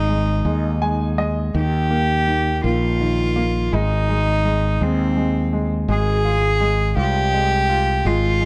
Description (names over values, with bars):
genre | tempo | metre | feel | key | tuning
six-eight pop ballad | 55 BPM (dotted quarters) | 6/8 | straight | unclear | A4 = 440 Hz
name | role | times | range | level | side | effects
warm cello | melody | 0.0-8.5 s | C4 to Ab4 | -23 LUFS | equal | none
clear baby grand piano | accompaniment | 0.0-8.5 s | Eb3 to Ab5 | -27 LUFS | equal | none
fretless electric bass | bass | 0.0-8.5 s | Ab1 to Eb2 | -23 LUFS | equal | none
room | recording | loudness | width
light reverb, small room ambience | none | -19 LUFS | mono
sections
0.0-8.5 A section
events
grand piano fill 0.5-1.5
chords
0.0 Ab5; 1.5 Eb; 3.7 Ab; 5.9 Fmadd9/Ab